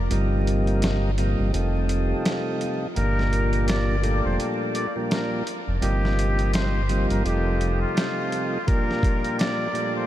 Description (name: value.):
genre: hip hop, boom-bap hip-hop.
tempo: 84 BPM.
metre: 4/4.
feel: swing 58% on 16ths.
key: G minor.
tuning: A4 = 440 Hz.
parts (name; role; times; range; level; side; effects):
sub bass with octave; bass; 0.0-7.8 s; F1 to G1; -23 LUFS; equal; none.
tonewheel organ; accompaniment; 0.1-10.1 s; G2 to Eb4; -26 LUFS; equal; slow rotary speaker.
dusty soul sampler-style drum kit; drums; 0.1-9.9 s; hi-hat, kick drum, snare drum; -29 LUFS; equal; none.
trumpet with straight mute; melody; 3.0-10.1 s; F4 to D5; -30 LUFS; left 1 dB; ping-pong delay.
room: moderate huge ambient reverb, RT60 8.6 s.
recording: dreamy mix soaked in reverb, vinyl crackle.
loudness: -21 LUFS.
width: side -13 dB against mid.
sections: 0.0-10.1 A section.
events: break 0.0-8.7; kick muted 7.3-8.7.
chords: 0.1 Eb6/G; 1.5 F7; 3.0 Gm9; 5.8 Eb6/G; 7.3 F7; 8.7 Gm9.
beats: | 0.11 0.82 1.54 2.25 | 2.97 3.68 4.39 5.11 | 5.82 6.54 7.25 7.97 | 8.68 9.39.